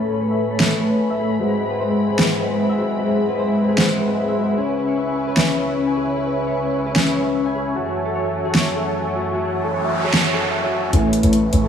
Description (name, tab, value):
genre	future bass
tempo	151 BPM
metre	4/4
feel	half-time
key	A major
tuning	A4 = 440 Hz
part	muted studio string section	sustained chords	0.0-11.7 s	C#2 to B5	-29 LUFS	equal	low-pass filter
part	concert harp	arpeggios	0.0-11.7 s	F#4 to G#5	-27 LUFS	left 2 dB	vintage 12-bit sampler grit, low-pass filter, dub echo
part	dense compressed supersaw	riff	0.0-11.7 s	G#3 to B5	-20 LUFS	equal	low-pass filter, dub echo
part	dubstep drum kit	drums	0.6-11.6 s	hi-hat, snare drum	-20 LUFS	right 1 dB	overdrive, high-pass filter on hats, high-pass filter on snare, high-pass filter on toms, high-pass filter on cymbals
part	noise sweep and riser	sound effects	9.6-11.7 s	none	-26 LUFS	right 2 dB	none
part	clean electric guitar	melody	10.9-11.4 s	A3 to C#5	-24 LUFS	left 6 dB	spring reverb, low-pass filter
part	warm 808-style bass	bass	10.9-11.7 s	A1	-18 LUFS	equal	none
room	moderate lush hall reverb, RT60 2.1 s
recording	small room ambience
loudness	-17 LUFS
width	side -8 dB against mid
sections	0.0-10.9 A section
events	filter sweep on harp 0.0-10.9; noise sweep 9.6-10.9; riser 10.9-11.7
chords	0.0 Amaj9; 1.4 G#7alt; 4.6 C#m7; 7.8 F#m9; 10.9 Amaj9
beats	0.20 0.60 1.00 | 1.40 1.79 2.19 2.59 | 2.98 3.38 3.78 4.18 | 4.57 4.97 5.37 5.77 | 6.16 6.56 6.96 7.36 | 7.75 8.15 8.55 8.95 | 9.34 9.74 10.14 10.53 | 10.93 11.33